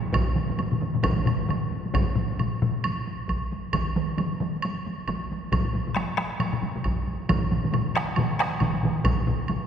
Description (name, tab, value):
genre	japanese traditional, taiko drum ensemble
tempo	135 BPM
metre	4/4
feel	swing 60% on 16ths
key	none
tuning	none
part	taiko ensemble	percussion	0.1-9.7 s	none	-32 LUFS	right 1 dB	none
part	taiko ensemble	percussion	0.1-2.7, 5.5-9.6 s	none	-27 LUFS	left 3 dB	none
part	taiko ensemble	percussion	0.1-4.5, 7.3-9.0 s	none	-29 LUFS	right 3 dB	none
part	taiko ensemble	percussion	0.1-9.2 s	none	-30 LUFS	equal	none
part	woodblock	percussion	0.1-9.6 s	none	-34 LUFS	right 4 dB	none
room	wet church reverb, RT60 3.2 s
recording	recorded in a church or concert hall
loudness	-24 LUFS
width	side -8 dB against mid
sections	0.0-1.9 A section; 1.9-9.7 B section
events	speeding up 0.0-9.7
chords	none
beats	| 0.14 0.59 1.04 1.49 | 1.94 2.39 2.84 3.29 | 3.74 4.18 4.63 5.08 | 5.52 5.96 6.41 6.85 | 7.29 7.74 8.18 8.62 | 9.06 9.50